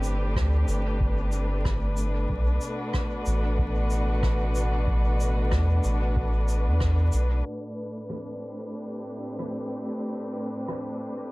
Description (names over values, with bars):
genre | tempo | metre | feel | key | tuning
ambient dub | 93 BPM | 4/4 | swing 57% on 16ths | A dorian | A4 = 440 Hz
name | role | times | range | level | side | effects
muted chamber string section | sustained chords | 0.0-11.3 s | A2 to B4 | -30 LUFS | equal | none
soft dub sub bass | bass | 0.0-7.4 s | G1 to E2 | -24 LUFS | equal | none
shaker and rim click | drums | 0.0-10.8 s | none | -38 LUFS | right 1 dB | dub echo
electronic kick drum | drums | 0.4-7.0 s | none | -29 LUFS | equal | none
room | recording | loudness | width
light reverb, small room ambience | vinyl crackle, low-pass filter | -24 LUFS | side -22 dB against mid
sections
0.0-7.5 A section; 7.5-11.3 B section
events
band accent 6.8-7.1; filter sweep 7.5-11.3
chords
0.0 Am11; 2.3 Bm7; 7.5 Am11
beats
0.36 1.00 1.65 | 2.30 2.94 3.59 4.23 | 4.88 5.52 6.17 6.81 | 7.46 8.10 8.75 9.39 | 10.04 10.68